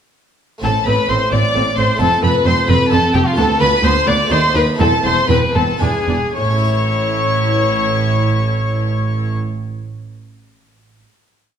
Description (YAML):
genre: classical, baroque-style concerto movement with solo episodes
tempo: 109-132 BPM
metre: 3/4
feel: straight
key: unclear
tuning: A4 = 437 Hz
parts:
  - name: dark violin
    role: melody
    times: 0.6-9.3 s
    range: F4 to D5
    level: -19 LUFS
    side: left 2 dB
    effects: none
  - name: rich chamber violin section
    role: melody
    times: 0.6-9.3 s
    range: F5 to D6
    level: -21 LUFS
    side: left 2 dB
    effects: none
  - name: warm chamber violin section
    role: second line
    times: 0.6-9.3 s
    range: F4 to D5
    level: -22 LUFS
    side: left 3 dB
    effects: none
  - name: harpsichord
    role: accompaniment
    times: 0.6-9.6 s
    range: D2 to C#5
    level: -24 LUFS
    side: equal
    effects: none
  - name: warm chamber viola section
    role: accompaniment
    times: 0.6-9.3 s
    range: B3 to E4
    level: -25 LUFS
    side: equal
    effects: none
  - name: dark chamber cello section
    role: bass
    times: 0.6-9.3 s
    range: D2 to A2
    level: -20 LUFS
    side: right 2 dB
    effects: none
  - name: rich chamber double bass section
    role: bass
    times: 0.6-9.3 s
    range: E1 to D#2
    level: -21 LUFS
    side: right 3 dB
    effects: none
room: wet recital hall reverb, RT60 1.5 s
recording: minimal, uncompressed stereo recording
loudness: -13 LUFS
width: side -8 dB against mid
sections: 0.6-6.4 ritornello; 6.4-9.7 final chord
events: slowing down 2.7-6.4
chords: 0.6 Am; 2.0 F; 3.4 Bm7b5/D; 4.3 D#dim7; 4.8 Am/E; 5.8 E7; 6.4 A